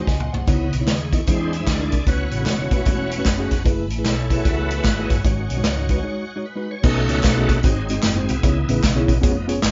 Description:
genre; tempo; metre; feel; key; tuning
uptempo gospel; 151 BPM; 4/4; swing 64% on 8ths; C# minor; A4 = 440 Hz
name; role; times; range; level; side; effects
tine electric piano; accompaniment; 0.0-9.6 s; G#2 to G#5; -27 LUFS; equal; none
bright studio string section; sustained chords; 0.0-6.8 s; C#5 to C#6; -41 LUFS; equal; none
bright tonewheel organ; sustained chords; 0.0-9.5 s; D#3 to E5; -29 LUFS; equal; fast rotary speaker, overdrive, chorus vibrato
hollow-body short-scale fingered electric bass; bass; 0.1-9.7 s; E1 to E2; -27 LUFS; equal; none
swinging big-band drum kit; drums; 0.1-9.7 s; crash cymbal, hi-hat, kick drum, snare drum, toms; -23 LUFS; equal; none
tambourine and handclaps; percussion; 0.5-9.7 s; none; -36 LUFS; equal; none
room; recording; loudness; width
moderate small room reverb, RT60 0.5 s; band playing live in one room, nothing above 7.5 kHz; -20 LUFS; mono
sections
0.0-6.8 A section; 6.8-9.7 B section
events
tonewheel organ solo 0.0-6.8, 6.8-9.7; drum fill 0.1-0.5; break 6.0-6.8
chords
0.5 C#m9; 1.3 Eaug7; 2.1 A69; 3.7 F#m11; 5.3 G#7sus4; 6.8 B7; 7.6 G#7; 8.4 C#m7

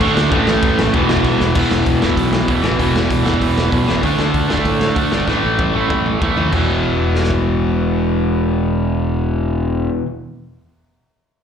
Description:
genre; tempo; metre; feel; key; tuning
punk rock; 192 BPM; 4/4; straight; unclear; A4 = 440 Hz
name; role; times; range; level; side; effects
cranked stack guitar; riff; 0.0-10.1 s; E2 to D4; -20 LUFS; left 12 dB; overdrive, slapback echo
overdriven semi-hollow guitar; riff; 0.0-10.1 s; E2 to D4; -19 LUFS; right 9 dB; slapback echo
fuzz picked electric bass; bass; 0.0-9.9 s; E1 to A2; -20 LUFS; equal; overdrive
raw garage drum kit; drums; 0.0-7.4 s; crash cymbal, hi-hat, kick drum, snare drum, toms; -20 LUFS; equal; none
room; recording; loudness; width
little or no reverb; live gig heard through the venue's PA, club reverb; -14 LUFS; side -8 dB against mid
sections
0.0-1.5 A section; 1.5-6.5 B section; 6.5-9.0 C section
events
drum fill 1.4, 5.3-6.5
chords
0.3 A5; 0.9 E5; 4.0 D5; 5.3 A5; 6.5 E5

